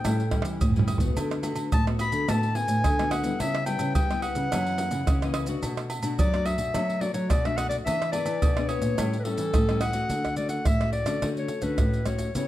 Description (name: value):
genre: samba and choro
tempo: 107 BPM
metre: 4/4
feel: straight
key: A major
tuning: A4 = 440 Hz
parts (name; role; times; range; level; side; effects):
- clear clarinet; melody; 0.0-12.5 s; A4 to B5; -29 LUFS; left 2 dB; none
- nylon-string guitar; accompaniment; 0.0-12.5 s; F#2 to G#4; -33 LUFS; left 5 dB; none
- nylon-string guitar; bass; 0.0-12.5 s; A2 to G3; -29 LUFS; equal; none
- agogo bells, maracas, surdo, pandeiro and tamborim; percussion; 0.0-12.5 s; none; -27 LUFS; right 1 dB; none
room: light reverb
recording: none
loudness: -23 LUFS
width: side -14 dB against mid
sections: 0.0-10.1 A section; 10.1-12.5 B section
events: drum fill 0.3-1.2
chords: 0.0 A7; 1.2 D6; 3.4 C#m7b5; 4.5 F#7; 5.6 Bm7; 7.9 E7; 9.0 A7; 10.1 Dmaj7